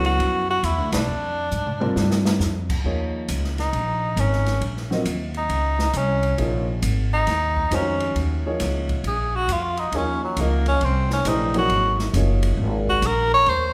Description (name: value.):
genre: modal jazz.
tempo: 136 BPM.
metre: 4/4.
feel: swing 66% on 8ths.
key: Eb dorian.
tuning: A4 = 440 Hz.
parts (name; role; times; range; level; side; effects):
clear tenor saxophone; melody; 0.0-13.7 s; Gb3 to Db5; -24 LUFS; equal; none.
warm baby grand piano; accompaniment; 0.0-12.8 s; Eb3 to Eb5; -29 LUFS; equal; none.
upright bass; bass; 0.0-13.7 s; Gb1 to G#2; -26 LUFS; equal; none.
open jazz drum kit; drums; 0.0-13.6 s; crash cymbal, hi-hat, kick drum, ride cymbal, snare drum, toms; -33 LUFS; equal; none.
room: moderate recital hall reverb, RT60 1.6 s.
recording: recorded in a church or concert hall.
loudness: -22 LUFS.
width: mono.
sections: 0.0-2.8 A section; 2.8-13.7 B section.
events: band accent 0.9; drum fill 1.5-2.4; tenor saxophone solo 2.8-13.7.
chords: 0.0 Bm9; 1.1 A#13; 2.8 Eb9sus4; 9.9 Ab9sus4.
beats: 0.20 0.64 | 1.08 1.52 1.96 2.41 | 2.85 3.29 3.73 4.18 | 4.62 5.06 5.50 5.95 | 6.39 6.83 7.28 7.72 | 8.16 8.60 9.04 9.49 | 9.93 10.37 10.82 11.26 | 11.70 12.14 12.59 13.03 | 13.47.